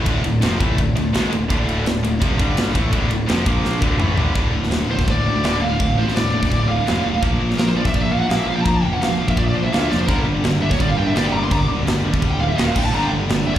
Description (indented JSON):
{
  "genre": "heavy metal",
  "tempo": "168 BPM",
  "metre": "4/4",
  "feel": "straight",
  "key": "D minor",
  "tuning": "A4 = 440 Hz",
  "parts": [
    { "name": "warm chamber string section", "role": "sustained chords", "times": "0.0-4.4, 10.1-13.6 s", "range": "D3 to F5", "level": "-33 LUFS", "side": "left 1 dB", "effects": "none" },
    { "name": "heavy high-gain guitar", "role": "riff", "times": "0.0-13.6 s", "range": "D2 to Bb3", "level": "-26 LUFS", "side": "left 1 dB", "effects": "distortion, slapback echo" },
    { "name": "high-gain distorted guitar", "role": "riff", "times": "0.0-13.6 s", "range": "D2 to Bb3", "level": "-26 LUFS", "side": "left 8 dB", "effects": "distortion" },
    { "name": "tight distorted guitar", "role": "riff", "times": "0.0-13.6 s", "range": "D2 to Bb3", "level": "-25 LUFS", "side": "right 7 dB", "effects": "distortion, slapback echo" },
    { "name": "fuzz fingered electric bass", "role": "bass", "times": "0.0-13.6 s", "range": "D1 to Bb2", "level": "-22 LUFS", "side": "equal", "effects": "overdrive" },
    { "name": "tight metal drum kit", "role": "drums", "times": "0.1-13.6 s", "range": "crash cymbal, kick drum, ride cymbal, snare drum, toms", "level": "-22 LUFS", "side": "equal", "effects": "none" },
    { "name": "high-gain lead guitar", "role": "melody", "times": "4.9-13.6 s", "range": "Bb4 to D6", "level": "-24 LUFS", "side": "right 1 dB", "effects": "distortion, slapback echo" }
  ],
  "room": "little or no reverb",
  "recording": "live gig heard through the venue's PA, club reverb",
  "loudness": "-16 LUFS",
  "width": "side -11 dB against mid",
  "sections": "0.0-4.4 A section; 4.4-13.6 B section",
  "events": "drum fill 3.6-4.4, 9.9; lead electric guitar solo 4.4-13.6",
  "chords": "0.0 Dm; 2.4 G5; 2.8 Dm; 3.5 Bb5; 3.8 Dm; 7.2 Bb5; 10.1 Gm; 12.6 Eb5; 12.8 D5; 12.9 Gm",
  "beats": "| 0.07 0.42 0.78 1.14 | 1.50 1.86 2.21 2.57 | 2.93 3.29 3.65 4.00 | 4.36 4.72 5.08 5.44 | 5.79 6.15 6.51 6.87 | 7.23 7.58 7.94 8.30 | 8.66 9.02 9.37 9.73 | 10.09 10.45 10.80 11.16 | 11.52 11.87 12.23 12.59 | 12.94 13.30"
}